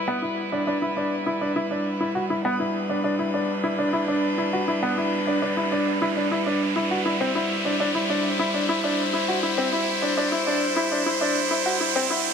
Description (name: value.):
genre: piano and strings electronica.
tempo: 101 BPM.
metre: 4/4.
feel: straight.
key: unclear.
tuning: A4 = 440 Hz.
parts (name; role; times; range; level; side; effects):
rich string quartet; sustained chords; 0.0-12.3 s; G3 to C5; -26 LUFS; equal; low-pass filter.
riser; sound effects; 0.9-12.3 s; none; -29 LUFS; right 1 dB; none.
warm upright piano; riff; 0.1-12.3 s; B3 to F#4; -24 LUFS; equal; tape echo.
room: moderate huge ambient reverb, RT60 7.8 s.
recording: high-pass filter.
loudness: -21 LUFS.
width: side -6 dB against mid.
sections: 0.0-12.3 A section.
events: build-up 0.0-12.3; filter sweep 0.0-12.3; riser 0.9-12.3.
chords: 0.0 G; 7.2 C.